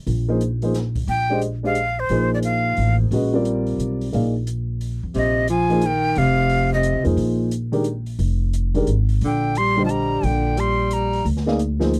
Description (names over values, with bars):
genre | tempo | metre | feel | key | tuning
modal jazz | 177 BPM | 3/4 | swing 64% on 8ths | unclear | A4 = 439 Hz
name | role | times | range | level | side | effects
upright bass | bass | 0.1-12.0 s | F1 to F2 | -24 LUFS | equal | none
open jazz drum kit | drums | 0.1-12.0 s | hi-hat, kick drum, snare drum | -38 LUFS | equal | none
warm upright piano | accompaniment | 0.3-11.9 s | D3 to F5 | -24 LUFS | equal | none
breathy bright jazz flute | melody | 1.1-3.0, 5.2-7.0, 9.3-11.3 s | C5 to C6 | -24 LUFS | equal | none
bright tenor saxophone | second line | 5.2-7.0, 9.2-11.3 s | C3 to G3 | -25 LUFS | equal | none
room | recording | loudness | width
little or no reverb | dry, close 1970s-style studio recording | -21 LUFS | mono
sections
0.0-12.0 A section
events
none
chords
0.0 Bb9sus4; 1.1 Gm7; 5.1 Bb9sus4; 9.2 Gm/Bb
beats
| 0.07 0.41 0.75 | 1.08 1.42 1.76 | 2.10 2.44 2.77 | 3.11 3.45 3.79 | 4.13 4.46 4.80 | 5.14 5.48 5.82 | 6.16 6.50 6.84 | 7.17 7.51 7.85 | 8.19 8.53 8.87 | 9.21 9.55 9.89 | 10.23 10.57 10.91 | 11.24 11.59 11.92